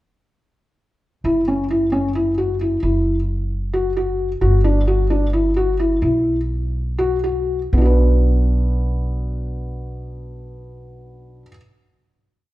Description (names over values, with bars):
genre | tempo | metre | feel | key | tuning
contemporary instrumental, chamber music in an uneven meter | 235-265 BPM (eighths) | 7/8 | straight | B minor | A4 = 439 Hz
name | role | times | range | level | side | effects
felt-muted upright piano | arpeggios | 1.2-11.5 s | B3 to B4 | -20 LUFS | left 1 dB | none
upright bass | bass | 1.2-11.4 s | F#1 to B1 | -20 LUFS | equal | none
room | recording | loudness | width
light reverb | dark, warm production | -16 LUFS | side -16 dB against mid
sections
1.2-7.7 A section; 7.7-11.3 final chord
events
slowing down 4.4-7.7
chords
1.2 F#5; 2.8 Esus2/F#; 4.4 G5; 6.0 B5; 7.7 Bm